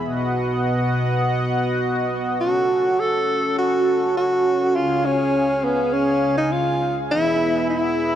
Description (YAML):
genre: synthwave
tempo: 102 BPM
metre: 4/4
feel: straight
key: F# dorian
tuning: A4 = 440 Hz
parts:
  - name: chorused pulse-width pad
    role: sustained chords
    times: 0.0-8.2 s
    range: B2 to B5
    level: -22 LUFS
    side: equal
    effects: none
  - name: breathy tenor saxophone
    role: melody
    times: 2.4-8.2 s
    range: B3 to A4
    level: -19 LUFS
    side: right 1 dB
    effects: tape echo
room: wet lush hall reverb, RT60 2.2 s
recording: dark, warm production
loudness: -18 LUFS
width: side -10 dB against mid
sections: 0.0-8.2 A section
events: none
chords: 0.1 B; 2.4 F#m; 4.8 C#; 7.1 E